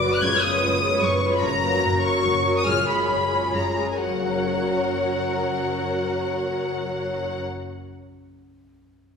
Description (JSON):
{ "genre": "classical, dramatic, fast romantic movement for symphony orchestra", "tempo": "125-152 BPM", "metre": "3/4", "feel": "straight", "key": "F# major", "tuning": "A4 = 440 Hz", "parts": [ { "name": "clear symphonic violin section", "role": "melody", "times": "0.0-7.4 s", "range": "F#5 to G#6", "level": "-24 LUFS", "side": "left 2 dB", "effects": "none" }, { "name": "dark symphonic violin section", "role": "second line", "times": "0.0-7.4 s", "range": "G#4 to D5", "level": "-26 LUFS", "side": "left 1 dB", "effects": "none" }, { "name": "warm symphonic viola section", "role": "accompaniment", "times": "0.0-7.4 s", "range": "F#3 to F#4", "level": "-28 LUFS", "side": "right 1 dB", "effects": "none" }, { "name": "concert harp", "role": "arpeggios", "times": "0.0-8.3 s", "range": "F#2 to D5", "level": "-31 LUFS", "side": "left 4 dB", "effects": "none" }, { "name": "dark symphonic double bass section", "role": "bass", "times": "0.0-7.4 s", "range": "F#1", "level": "-33 LUFS", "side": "right 2 dB", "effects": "none" }, { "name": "rich symphonic cello section", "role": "bass", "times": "0.0-7.4 s", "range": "F#2", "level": "-35 LUFS", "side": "right 2 dB", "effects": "none" } ], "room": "wet scoring stage reverb, RT60 1.5 s", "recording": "heard from further back in the room", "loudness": "-20 LUFS", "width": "side -6 dB against mid", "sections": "0.0-4.0 A section; 4.0-6.6 B section", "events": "slowing down 0.8-4.0", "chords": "0.2 C#7/F#; 1.4 F#; 2.6 C#7/F#; 4.0 F#" }